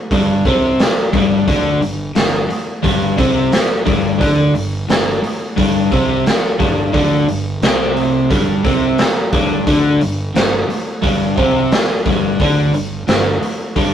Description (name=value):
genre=blues rock power trio and southern rock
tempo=88 BPM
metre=4/4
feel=straight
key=unclear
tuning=A4 = 440 Hz
part: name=crunchy overdriven guitar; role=riff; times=0.1-13.9 s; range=G2 to D4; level=-15 LUFS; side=equal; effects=none
part: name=fuzz fingered electric bass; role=bass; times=0.1-13.9 s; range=G1 to D2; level=-24 LUFS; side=equal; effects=overdrive
part: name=raw garage drum kit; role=drums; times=0.1-13.9 s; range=hi-hat, kick drum, snare drum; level=-17 LUFS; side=equal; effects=none
room=moderate studio reverb, RT60 0.6 s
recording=rough rehearsal-room recording, tube saturation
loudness=-13 LUFS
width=side -9 dB against mid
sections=0.0-13.9 A section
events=none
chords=0.0 G5